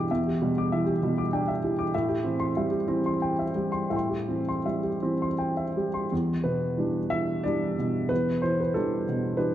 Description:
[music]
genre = neoclassical minimalist piano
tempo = 80-100 BPM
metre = 3/4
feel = rubato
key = E minor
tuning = A4 = 443 Hz
[part]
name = warm upright piano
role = solo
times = 0.0-9.5 s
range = E2 to D6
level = -25 LUFS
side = equal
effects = none
[sound]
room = wet recital hall reverb, RT60 1.6 s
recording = dark, warm production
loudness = -25 LUFS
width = side -12 dB against mid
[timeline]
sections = 0.0-6.1 A section; 6.1-9.5 B section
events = none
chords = 0.0 Em7; 1.9 Am7; 6.1 Em7

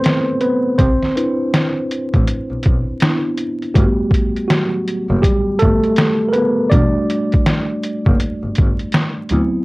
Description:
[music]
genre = lo-fi hip hop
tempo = 81 BPM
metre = 4/4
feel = swing 61% on 16ths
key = unclear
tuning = A4 = 440 Hz
[part]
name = mellow tine electric piano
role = accompaniment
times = 0.0-9.6 s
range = F#3 to D5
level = -17 LUFS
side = equal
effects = medium stereo tremolo, cassette tape
[part]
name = trip hop sampler-style drum kit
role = drums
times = 0.0-9.5 s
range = hi-hat, kick drum, snare drum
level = -16 LUFS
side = equal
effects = overdrive
[part]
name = bright double bass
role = bass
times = 0.8-9.4 s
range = E1 to D2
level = -19 LUFS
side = equal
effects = transformer saturation
[sound]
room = light reverb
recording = worn, warbling old tape, cassette tape, vinyl crackle, warbly pitch drift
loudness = -14 LUFS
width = side -22 dB against mid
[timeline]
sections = 0.0-9.6 A section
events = tine electric piano solo 0.0-9.6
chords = 0.0 D13 (rootless); 0.8 Cmaj9; 3.7 Gmaj9; 6.7 Em11 (rootless)

